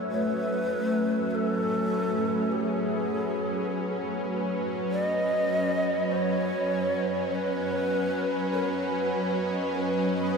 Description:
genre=ambient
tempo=50 BPM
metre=4/4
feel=straight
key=F# dorian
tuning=A4 = 440 Hz
part: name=granular cloud pad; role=sustained chords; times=0.0-10.4 s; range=F#3 to G#5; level=-28 LUFS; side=equal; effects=built-in reverb
part: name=bowed-like drone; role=drone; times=0.0-10.4 s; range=F#3 to C#4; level=-32 LUFS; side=equal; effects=built-in reverb
part: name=breathy mellow long shakuhachi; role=melody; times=0.1-10.4 s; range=G#4 to D#5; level=-29 LUFS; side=equal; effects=tape echo
room=wet huge ambient reverb, RT60 7.7 s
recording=none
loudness=-25 LUFS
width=side -5 dB against mid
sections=0.0-10.4 A section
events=filter sweep on ambient pad 0.0-10.4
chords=0.0 F#m11; 4.9 G#m/F#

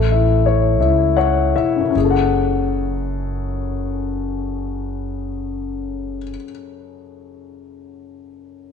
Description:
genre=six-eight pop ballad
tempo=50-60 BPM (dotted quarters)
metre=6/8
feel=straight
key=F# minor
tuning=A4 = 440 Hz
part: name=warm upright piano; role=accompaniment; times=0.0-8.7 s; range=F#2 to F#5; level=-20 LUFS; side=left 8 dB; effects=none
part: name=upright bass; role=bass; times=0.0-6.3 s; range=E1 to C#2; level=-21 LUFS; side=right 2 dB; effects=none
room=moderate echo chamber reverb, RT60 1.8 s, small room ambience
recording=1960s-style stereo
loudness=-17 LUFS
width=side -6 dB against mid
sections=0.0-1.9 A section; 1.9-6.7 B section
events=slowing down 0.0-1.9; upright piano fill 0.8-1.9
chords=0.0 A; 1.9 F#madd9

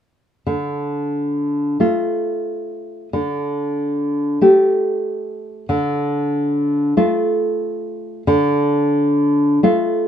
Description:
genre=romantic piece for solo classical guitar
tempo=46 BPM (dotted quarters)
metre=6/8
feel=uneven beats, rubato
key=D minor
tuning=A4 = 435 Hz
part: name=nylon-string guitar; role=solo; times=0.5-10.1 s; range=D3 to G4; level=-16 LUFS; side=equal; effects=none
room=light reverb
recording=minimal, uncompressed stereo recording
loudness=-16 LUFS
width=side -9 dB against mid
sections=0.5-10.1 A section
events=none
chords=0.5 Dm; 3.1 Dsus4; 5.7 Dm

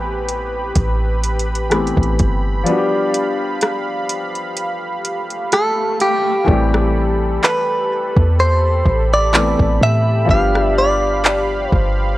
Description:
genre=contemporary R&B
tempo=63 BPM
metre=4/4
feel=swing 54% on 16ths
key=A minor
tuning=A4 = 440 Hz
part: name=warm baby grand piano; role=accompaniment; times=0.0-12.2 s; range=E3 to A4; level=-21 LUFS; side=left 3 dB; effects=none
part: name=warm analog pad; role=sustained chords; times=0.0-12.2 s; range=G4 to B5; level=-24 LUFS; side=right 1 dB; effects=chorus
part: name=clean 808-style bass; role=bass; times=0.0-12.2 s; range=G1 to A2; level=-18 LUFS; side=equal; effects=none
part: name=swell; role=sound effects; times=4.8-6.5 s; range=none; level=-30 LUFS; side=left 1 dB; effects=none
part: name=smooth R&B drum kit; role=drums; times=0.3-12.0 s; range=handclaps, hi-hat, kick drum, rim click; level=-17 LUFS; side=equal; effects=overdrive
part: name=direct-recorded clean electric guitar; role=melody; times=5.5-12.2 s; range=G4 to F5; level=-18 LUFS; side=equal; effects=none
room=little or no reverb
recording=dry, gritty hardware recording, transformer saturation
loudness=-14 LUFS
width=side -16 dB against mid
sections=0.0-6.5 A section; 6.5-12.2 B section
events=kick muted 2.7-6.5; swell 4.8-6.5; hi-hats muted 6.5-12.2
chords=0.0 Am9; 2.7 G7; 6.5 Am9; 10.3 G7

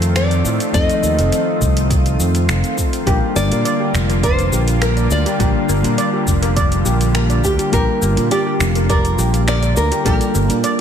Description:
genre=sunset chillout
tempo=103 BPM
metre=4/4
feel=straight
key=Bb major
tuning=A4 = 439 Hz
part: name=nylon-string guitar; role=melody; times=0.0-10.8 s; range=G4 to Eb5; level=-22 LUFS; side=equal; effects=tape echo, shimmer reverb
part: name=mellow FM electric piano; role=accompaniment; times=0.0-10.8 s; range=F3 to Bb4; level=-23 LUFS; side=moving between left 8 dB and right 2 dB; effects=chorus, auto-pan, digital delay, shimmer reverb
part: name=lush unison pad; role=sustained chords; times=0.0-10.8 s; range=D3 to F4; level=-22 LUFS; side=equal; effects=chorus, shimmer reverb
part: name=sustaining fretless electric bass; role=bass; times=0.0-10.6 s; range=F1 to Bb2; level=-17 LUFS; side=equal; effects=none
part: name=deep house drum kit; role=drums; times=0.0-10.8 s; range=cabasa, finger snaps, hi-hat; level=-25 LUFS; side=equal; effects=studio reverb, soft clipping on snare
part: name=electronic kick drum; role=drums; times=0.7-10.2 s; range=none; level=-19 LUFS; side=equal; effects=studio reverb
part: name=steel pan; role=arpeggios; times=3.1-10.8 s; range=G4 to D5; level=-24 LUFS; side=right 1 dB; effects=digital delay, shimmer reverb
room=moderate concert hall reverb, RT60 1.9 s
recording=dense, heavily limited modern master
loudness=-14 LUFS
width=side -8 dB against mid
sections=0.0-10.8 A section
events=none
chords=0.0 F7; 3.1 Bb6

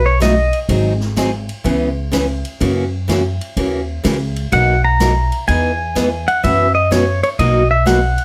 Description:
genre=country, western swing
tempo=125 BPM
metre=4/4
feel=swing 66% on 8ths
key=B major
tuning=A4 = 440 Hz
part: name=pedal steel guitar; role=melody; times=0.0-0.6, 4.5-8.2 s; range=C#5 to A#5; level=-18 LUFS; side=equal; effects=none
part: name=upright bass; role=bass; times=0.0-8.2 s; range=G#1 to F#2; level=-20 LUFS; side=equal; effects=none
part: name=picked steel-string acoustic guitar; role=accompaniment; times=0.2-8.0 s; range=B2 to G#4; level=-20 LUFS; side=equal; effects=none
part: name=swinging big-band drum kit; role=drums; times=0.2-8.2 s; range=hi-hat, kick drum, ride cymbal, snare drum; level=-28 LUFS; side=equal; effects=none
room=moderate studio reverb, RT60 0.5 s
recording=none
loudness=-16 LUFS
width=mono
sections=0.0-8.2 A section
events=none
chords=0.0 B7; 0.7 G#7; 1.6 C#m7; 2.6 F#7; 4.5 Bmaj7; 5.5 Emaj7; 6.4 F#7sus4; 7.4 Bmaj7

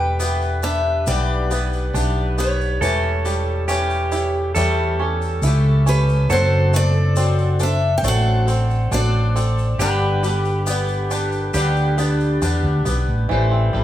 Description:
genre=acoustic folk duo or small band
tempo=69 BPM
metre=4/4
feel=straight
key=unclear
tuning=A4 = 442 Hz
part: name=picked steel-string acoustic guitar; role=melody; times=0.0-12.4 s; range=B4 to G5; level=-25 LUFS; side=left 1 dB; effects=none
part: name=pedal steel guitar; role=second line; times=0.0-12.8 s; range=D4 to B4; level=-26 LUFS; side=right 3 dB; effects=none
part: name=picked twelve-string acoustic guitar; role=accompaniment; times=0.0-13.8 s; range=G2 to A4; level=-25 LUFS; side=left 3 dB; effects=none
part: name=bluegrass banjo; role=arpeggios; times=0.0-13.8 s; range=D3 to E4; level=-28 LUFS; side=right 5 dB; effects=none
part: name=mellow fretless electric bass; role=bass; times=0.0-13.8 s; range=E1 to E2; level=-19 LUFS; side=equal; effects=none
part: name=tube shaker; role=percussion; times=0.2-13.1 s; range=none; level=-32 LUFS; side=left 4 dB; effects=none
room=wet large studio reverb, RT60 1.1 s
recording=band playing live in one room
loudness=-16 LUFS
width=side -12 dB against mid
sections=0.0-13.3 A section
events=none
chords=0.0 Em7; 2.8 A7/E; 6.3 D7/F#; 9.8 G; 13.3 Am7

